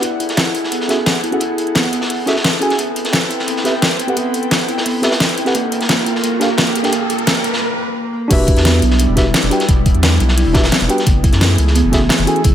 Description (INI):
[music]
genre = liquid drum and bass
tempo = 174 BPM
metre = 4/4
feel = straight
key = unclear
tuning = A4 = 440 Hz
[part]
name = tine electric piano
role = accompaniment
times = 0.0-12.4 s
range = C4 to G#5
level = -21 LUFS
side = equal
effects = dub echo
[part]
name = airy breathy pad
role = sustained chords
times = 0.0-12.5 s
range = E3 to G5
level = -22 LUFS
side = left 1 dB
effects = chorus
[part]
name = crunchy breakbeat drum kit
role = drums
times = 0.0-12.5 s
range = hi-hat, snare drum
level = -22 LUFS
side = equal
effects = high-pass filter on hats, high-pass filter on snare, high-pass filter on room
[part]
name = pop drum kit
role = drums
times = 0.0-12.5 s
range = crash cymbal, hi-hat, snare drum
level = -18 LUFS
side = left 1 dB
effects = overdrive
[part]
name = harp-like synth pluck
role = arpeggios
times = 0.2-12.5 s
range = Bb3 to E4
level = -22 LUFS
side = right 2 dB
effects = chorus, tape echo
[part]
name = riser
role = sound effects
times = 4.8-7.6 s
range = none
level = -26 LUFS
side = right 1 dB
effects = none
[part]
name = saturated sub bass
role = bass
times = 8.3-12.5 s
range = E1 to F#2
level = -15 LUFS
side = equal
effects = none
[part]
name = electronic kick drum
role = drums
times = 8.3-12.5 s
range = none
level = -14 LUFS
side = equal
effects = overdrive
[sound]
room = moderate plate reverb, RT60 2.2 s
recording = none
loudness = -13 LUFS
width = side -10 dB against mid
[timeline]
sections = 0.0-8.3 A section; 8.3-12.5 B section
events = build-up 0.0-8.3; riser 4.8-7.6; break 7.6-8.3; drop 8.3-12.5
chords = 0.0 F#m9; 2.8 Am9; 5.5 Gm9; 8.3 Em9; 11.1 F#m9